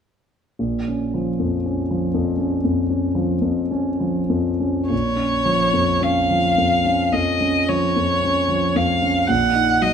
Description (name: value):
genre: classical, romantic duo for violin and grand piano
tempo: 49-60 BPM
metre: 4/4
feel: rubato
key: Bb minor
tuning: A4 = 440 Hz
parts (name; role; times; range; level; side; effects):
- warm concert grand piano; accompaniment; 0.6-9.9 s; Bb1 to Eb4; -19 LUFS; equal; none
- rich violin; melody; 4.9-9.9 s; Db5 to F#5; -19 LUFS; equal; none
room: wet stone room reverb, RT60 1.1 s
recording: none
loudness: -17 LUFS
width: side -7 dB against mid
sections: 0.6-4.9 A section; 4.9-9.9 B section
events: none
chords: 0.6 Bbm; 9.3 Adim7(no3)/Bb (rootless)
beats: | 0.61 1.66 2.67 3.74 | 4.92 6.03 7.14 8.22 | 9.29